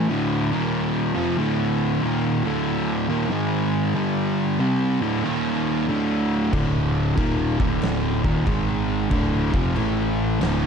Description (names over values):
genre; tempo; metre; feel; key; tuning
stoner and doom metal; 93 BPM; 4/4; swing 66% on 8ths; unclear; A4 = 438 Hz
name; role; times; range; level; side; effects
distorted electric guitar; riff; 0.0-10.7 s; D2 to C4; -27 LUFS; equal; distortion
thick fuzz guitar; riff; 0.0-10.7 s; D2 to C4; -25 LUFS; left 8 dB; distortion
thick fuzz guitar; riff; 0.0-10.7 s; D2 to C4; -25 LUFS; right 10 dB; distortion
fuzz fingered electric bass; bass; 6.5-10.7 s; D1 to A1; -27 LUFS; equal; overdrive
oversized low-tuned drum kit; drums; 6.5-10.6 s; crash cymbal, kick drum, snare drum; -26 LUFS; equal; none
room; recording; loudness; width
light reverb; dark, warm production; -20 LUFS; side -6 dB against mid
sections
0.0-10.7 A section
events
none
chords
0.1 D5; 0.4 Eb5; 1.1 Dm; 3.3 G#5; 4.0 G5; 4.6 D5; 5.2 Eb5; 5.9 D5; 8.5 G#5; 9.1 Dm; 9.8 A5